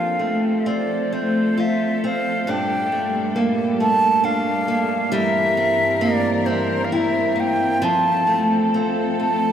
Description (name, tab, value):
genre	celtic folk, Celtic slow air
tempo	66 BPM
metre	3/4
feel	rubato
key	unclear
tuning	A4 = 440 Hz
part	bright wooden flute	melody	0.0-9.5 s	C5 to A5	-21 LUFS	right 1 dB	none
part	picked old ladder-braced acoustic guitar	accompaniment	0.0-9.5 s	G2 to F4	-21 LUFS	equal	none
part	rich studio string section	sustained chords	0.0-9.5 s	G2 to Bb4	-28 LUFS	equal	none
room	wet cathedral reverb, RT60 6.8 s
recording	in a vast, echoing space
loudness	-17 LUFS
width	side -9 dB against mid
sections	0.0-9.5 A section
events	none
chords	0.0 F; 2.5 Gmadd9; 5.1 C7/G; 7.8 F